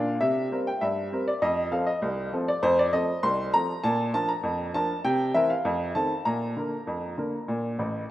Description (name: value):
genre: ragtime piano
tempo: 99 BPM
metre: 2/4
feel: straight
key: Bb major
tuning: A4 = 440 Hz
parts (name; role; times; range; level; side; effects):
- clear upright piano; solo; 0.0-8.1 s; A1 to C6; -24 LUFS; equal; none
room: wet plate reverb, RT60 3.2 s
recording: rough home demo mix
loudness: -24 LUFS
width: side -14 dB against mid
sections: 0.0-8.1 A section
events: upright piano fill 7.8-8.1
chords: 0.2 C5; 1.4 F7; 3.8 Bb; 5.0 C7; 5.6 F7; 6.3 Bb